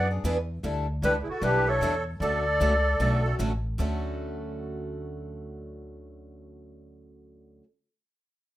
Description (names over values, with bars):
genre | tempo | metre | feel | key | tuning
acoustic string swing (jazz manouche) | 152 BPM | 4/4 | swing 64% on 8ths | D major | A4 = 441 Hz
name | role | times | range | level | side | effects
mellow clarinet | melody | 0.0-3.4 s | G#4 to D5 | -26 LUFS | left 1 dB | none
musette accordion | second line | 0.0-3.4 s | E4 to A4 | -31 LUFS | right 4 dB | none
picked acoustic archtop guitar | accompaniment | 0.0-7.7 s | D3 to A4 | -35 LUFS | left 6 dB | none
picked steel-string acoustic guitar | accompaniment | 0.0-7.6 s | D3 to B4 | -35 LUFS | right 4 dB | none
upright bass | bass | 0.0-7.6 s | A1 to F#2 | -30 LUFS | equal | none
room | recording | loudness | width
moderate studio reverb, RT60 0.6 s | rough home demo mix | -24 LUFS | side -14 dB against mid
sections
0.0-3.8 A section; 3.8-6.9 B section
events
none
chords
0.0 E7; 0.6 A9sus4; 2.2 Dmaj7